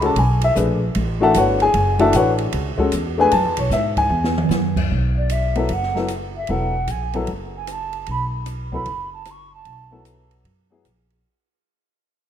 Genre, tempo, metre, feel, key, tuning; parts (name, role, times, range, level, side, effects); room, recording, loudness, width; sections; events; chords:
modal jazz; 152 BPM; 4/4; swing 65% on 8ths; B dorian; A4 = 442 Hz
warm upright piano; accompaniment; 0.0-10.8 s; E3 to A5; -18 LUFS; left 2 dB
upright bass; bass; 0.0-11.2 s; E1 to G#2; -22 LUFS; equal
open jazz drum kit; drums; 0.0-11.2 s; crash cymbal, hi-hat, kick drum, ride cymbal, rim click, snare drum, toms; -27 LUFS; right 2 dB
mellow hollow silver concert flute; melody; 5.2-10.0 s; D5 to C#6; -28 LUFS; right 2 dB
moderate lush hall reverb, RT60 2.2 s; rough home demo mix; -17 LUFS; side -9 dB against mid
0.0-4.9 A section; 4.9-11.2 B section
drum fill 4.1-4.5; fade-out 4.9-11.2; flute solo 4.9-11.2
0.0 B9sus4; 4.9 B7sus4